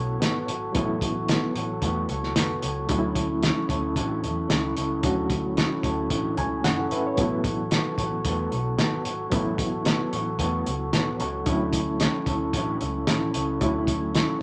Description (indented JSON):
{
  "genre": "indie pop, bedroom pop",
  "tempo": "112 BPM",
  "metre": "4/4",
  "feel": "swing 55% on 16ths",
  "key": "A major",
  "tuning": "A4 = 440 Hz",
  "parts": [
    { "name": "bright reed electric piano", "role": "accompaniment", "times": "0.0-14.4 s", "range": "F#3 to G#5", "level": "-33 LUFS", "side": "equal", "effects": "fast tremolo" },
    { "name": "electric guitar through a small old amp", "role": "accompaniment", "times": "0.0-14.4 s", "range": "D3 to C#5", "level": "-30 LUFS", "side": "equal", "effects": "vibrato effect" },
    { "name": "vintage muted picked electric bass", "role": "bass", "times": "0.0-14.2 s", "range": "F#1 to E2", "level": "-34 LUFS", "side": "equal", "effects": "none" },
    { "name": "cloth-damped thuddy drum kit", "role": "drums", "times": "0.2-14.3 s", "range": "hi-hat, kick drum, snare drum", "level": "-28 LUFS", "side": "equal", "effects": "none" }
  ],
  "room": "moderate club reverb, RT60 0.7 s",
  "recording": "none",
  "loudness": "-26 LUFS",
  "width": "mono",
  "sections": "0.0-14.4 A section",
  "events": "reed electric piano fill 6.1-7.2",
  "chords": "0.0 A69; 2.9 Dmaj9; 7.2 A69; 11.5 Dmaj9"
}